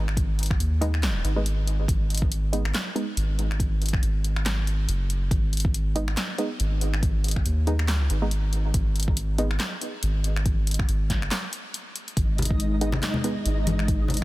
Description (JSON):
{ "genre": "deep dubstep", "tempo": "140 BPM", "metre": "4/4", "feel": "swing 57% on 16ths, half-time", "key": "G# minor", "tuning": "A4 = 440 Hz", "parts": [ { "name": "soft dub sub bass", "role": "bass", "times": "0.0-14.2 s", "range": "F#1 to D#2", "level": "-24 LUFS", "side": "equal", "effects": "none" }, { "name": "deep house drum kit", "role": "drums", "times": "0.1-14.2 s", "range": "finger snaps, handclaps, hi-hat, snare drum", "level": "-31 LUFS", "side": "equal", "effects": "none" }, { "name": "electronic kick drum", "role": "drums", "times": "0.2-14.2 s", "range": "none", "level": "-25 LUFS", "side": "equal", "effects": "none" }, { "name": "filtered dub chord stab", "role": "stabs", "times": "0.8-3.1, 6.0-9.5, 12.8-13.3 s", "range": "G#3 to D#4", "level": "-32 LUFS", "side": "right 1 dB", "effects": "chorus, dub echo" }, { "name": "dark analog pad", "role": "sustained chords", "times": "12.2-14.2 s", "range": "G#3 to D#4", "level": "-30 LUFS", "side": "left 1 dB", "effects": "chorus" }, { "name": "flickering grainy texture", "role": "texture", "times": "12.3-14.2 s", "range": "D#4 to D#5", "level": "-35 LUFS", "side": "right 1 dB", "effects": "built-in reverb" }, { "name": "congas", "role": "percussion", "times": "12.4-14.2 s", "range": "none", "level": "-30 LUFS", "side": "left 2 dB", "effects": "none" } ], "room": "little or no reverb", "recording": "dense, heavily limited modern master", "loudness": "-22 LUFS", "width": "side -18 dB against mid", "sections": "0.0-14.2 A section", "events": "break 11.3-12.2", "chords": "0.0 G#m" }